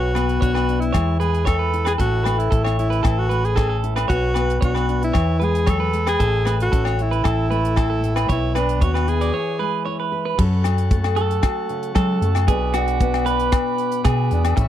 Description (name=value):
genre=highlife guitar band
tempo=114 BPM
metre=4/4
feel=straight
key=unclear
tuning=A4 = 439 Hz
part: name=bright alto saxophone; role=melody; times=0.0-9.9 s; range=D4 to A4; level=-24 LUFS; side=equal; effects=none
part: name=nylon-string guitar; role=accompaniment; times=0.0-14.7 s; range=A2 to B4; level=-26 LUFS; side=left 5 dB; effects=none
part: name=clean electric guitar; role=arpeggios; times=0.0-14.6 s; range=F#4 to D5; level=-25 LUFS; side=right 11 dB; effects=spring reverb, slapback echo
part: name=hollow-body short-scale fingered electric bass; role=bass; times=0.0-14.7 s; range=A1 to F#3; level=-21 LUFS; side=equal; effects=none
part: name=agogo bells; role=percussion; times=0.1-14.6 s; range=none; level=-28 LUFS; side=left 21 dB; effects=none
part: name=tight funk drum kit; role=drums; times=0.2-14.7 s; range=crash cymbal, hi-hat, kick drum, rim click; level=-22 LUFS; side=equal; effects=none
part: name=overdriven combo organ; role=sustained chords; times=10.4-14.7 s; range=E5 to D6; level=-36 LUFS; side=left 1 dB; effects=spring reverb
room=little or no reverb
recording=dry, close 1970s-style studio recording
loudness=-17 LUFS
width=side -11 dB against mid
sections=0.0-10.4 A section; 10.4-14.7 B section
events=break 9.3-10.4; clean electric guitar solo 10.4-14.7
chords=0.0 Bm; 0.9 E; 2.0 A; 4.1 Bm; 5.1 E; 6.2 A; 8.3 Bm; 9.3 E; 10.4 F#m; 12.5 Bm